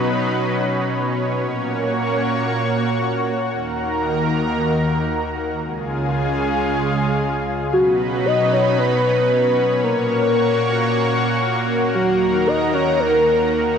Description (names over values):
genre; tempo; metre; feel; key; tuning
synthwave; free time; none; none; unclear; A4 = 441 Hz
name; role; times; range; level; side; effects
analog string pad; sustained chords; 0.0-13.8 s; Db2 to Db5; -19 LUFS; equal; ensemble chorus, vintage 12-bit sampler grit
soft octave-layered synth lead; melody; 7.7-13.8 s; F#4 to D#5; -18 LUFS; left 1 dB; chorus, phaser, cassette tape, ping-pong delay
room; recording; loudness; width
wet plate reverb, RT60 3.0 s; bright 1980s-style digital production; -17 LUFS; side -7 dB against mid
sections
0.0-7.7 A section; 7.7-13.8 B section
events
none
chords
0.0 Badd9; 1.4 Gb/Bb; 3.5 Ebm; 5.6 Db; 7.7 Badd9; 9.8 Gb/Bb; 11.9 Ebm